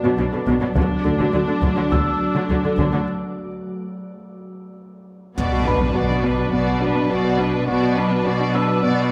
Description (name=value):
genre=cinematic, hybrid orchestral and electronic film score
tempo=104 BPM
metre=4/4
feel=straight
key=B minor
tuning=A4 = 440 Hz
part: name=rich symphonic viola section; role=accompaniment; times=0.0-9.1 s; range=D3 to D4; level=-27 LUFS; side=equal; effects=none
part: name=glassy FM pad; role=sustained chords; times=0.0-9.1 s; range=F#3 to D5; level=-28 LUFS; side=equal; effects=ensemble chorus, built-in reverb
part: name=thumb-piano-like synth pluck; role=arpeggios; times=0.0-8.9 s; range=D3 to B4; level=-29 LUFS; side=equal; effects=chorus, delay
part: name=rich symphonic cello section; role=bass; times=0.0-9.1 s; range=B2 to D3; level=-27 LUFS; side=equal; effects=none
part: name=felt-muted upright piano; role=texture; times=0.0-9.1 s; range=B4 to A6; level=-33 LUFS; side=equal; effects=delay
part: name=warm symphonic double bass section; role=bass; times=0.2-2.8 s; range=B1 to D2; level=-27 LUFS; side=equal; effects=none
part: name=taiko ensemble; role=drums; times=0.5-6.5 s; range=none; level=-29 LUFS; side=equal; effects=none
part: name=rich symphonic violin section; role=melody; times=5.4-9.1 s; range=B4 to D5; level=-28 LUFS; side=equal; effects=none
part: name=warm symphonic violin section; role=second line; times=5.4-9.1 s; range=D4 to F#4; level=-30 LUFS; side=equal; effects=none
part: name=impact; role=sound effects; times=5.4-7.7 s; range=none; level=-29 LUFS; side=equal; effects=none
room=moderate recital hall reverb, RT60 1.4 s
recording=none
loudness=-20 LUFS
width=mono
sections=0.0-5.4 A section; 5.4-9.1 B section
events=break 3.1-5.4; impact 5.4-7.7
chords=0.0 Bm; 0.8 D; 5.4 Bm